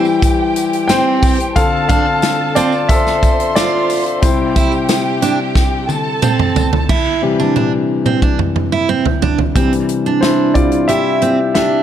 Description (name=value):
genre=piano-driven pop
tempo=90 BPM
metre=4/4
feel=straight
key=C major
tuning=A4 = 440 Hz
part: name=warm studio violin section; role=second line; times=0.0-6.9 s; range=G4 to C6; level=-21 LUFS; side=right 2 dB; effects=none
part: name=warm concert grand piano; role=accompaniment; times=0.0-11.8 s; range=C3 to G5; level=-16 LUFS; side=left 4 dB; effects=none
part: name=picked steel-string acoustic guitar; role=riff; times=0.0-11.8 s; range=C4 to F4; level=-18 LUFS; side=right 7 dB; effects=none
part: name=tambourine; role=percussion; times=0.1-6.7 s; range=none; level=-32 LUFS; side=left 6 dB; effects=none
part: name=natural country drum kit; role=drums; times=0.2-11.7 s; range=crash cymbal, hi-hat, kick drum, snare drum, toms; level=-16 LUFS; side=equal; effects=none
room=light reverb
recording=dark, warm production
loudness=-12 LUFS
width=side -10 dB against mid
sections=0.0-6.9 A section; 6.9-9.6 B section; 9.6-11.8 C section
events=grand piano solo 0.0-6.9, 6.9-9.6, 9.6-11.8; drum fill 5.6-6.9, 6.9-9.6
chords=0.0 C/E; 1.6 Dm7; 4.2 C; 6.9 Cadd9; 9.6 C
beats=0.23 0.89 | 1.56 2.23 2.89 3.56 | 4.22 4.89 5.56 6.22 | 6.89 7.56 8.22 8.89 | 9.56 10.22 10.89 11.56